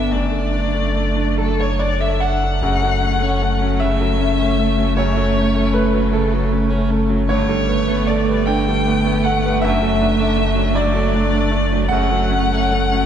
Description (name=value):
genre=neoclassical piano and strings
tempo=47-54 BPM (dotted quarters)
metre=6/8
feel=rubato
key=F# phrygian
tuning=A4 = 441 Hz
part: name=rich violin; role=melody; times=0.0-13.1 s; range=A4 to G5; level=-23 LUFS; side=left 5 dB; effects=none
part: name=rich cello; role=second line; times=0.0-13.1 s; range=A3 to B3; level=-23 LUFS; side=right 4 dB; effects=none
part: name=bright concert grand piano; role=accompaniment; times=0.0-13.1 s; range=F#2 to G5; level=-21 LUFS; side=equal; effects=none
part: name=clear viola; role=accompaniment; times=0.0-13.1 s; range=C#3 to D4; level=-24 LUFS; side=right 2 dB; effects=none
part: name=sub bass with octave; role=bass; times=0.0-13.1 s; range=F#1 to G1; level=-21 LUFS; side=equal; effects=none
room=wet church reverb, RT60 2.9 s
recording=recorded in a church or concert hall, nothing above 10.4 kHz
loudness=-15 LUFS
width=side -9 dB against mid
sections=0.0-2.6 A section; 2.6-13.1 B section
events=none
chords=0.1 D/F#; 2.6 F#m; 7.3 Gadd9; 9.6 D/F#; 11.9 F#m